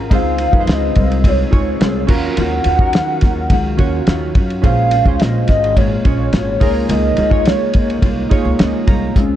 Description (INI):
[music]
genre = indie pop, bedroom pop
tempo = 106 BPM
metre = 4/4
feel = straight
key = Db major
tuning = A4 = 440 Hz
[part]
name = mellow electric guitar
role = accompaniment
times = 0.0-9.4 s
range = Bb2 to Bb4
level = -22 LUFS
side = left 3 dB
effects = analog chorus, warbly pitch drift, analog delay
[part]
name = warm analog keys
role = accompaniment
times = 0.0-9.2 s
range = F3 to Bb5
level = -23 LUFS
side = right 5 dB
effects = chorus, cassette tape, analog delay
[part]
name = upright bass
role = bass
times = 0.0-9.4 s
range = Ab1 to Gb2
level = -19 LUFS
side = equal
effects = none
[part]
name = hollow clarinet-like synth lead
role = melody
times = 0.1-9.4 s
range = Db4 to Gb5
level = -20 LUFS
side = equal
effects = lush chorus, analog delay
[part]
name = cloth-damped thuddy drum kit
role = drums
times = 0.1-9.3 s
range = crash cymbal, hi-hat, kick drum, ride cymbal, snare drum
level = -16 LUFS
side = equal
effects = vintage 12-bit sampler grit
[sound]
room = small room ambience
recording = echo-heavy mix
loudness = -12 LUFS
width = side -12 dB against mid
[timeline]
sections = 0.0-9.2 A section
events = synth keys fill 8.3-9.2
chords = 0.1 Dbmaj7; 2.1 Ebm9; 4.6 Bbm7; 6.6 Db6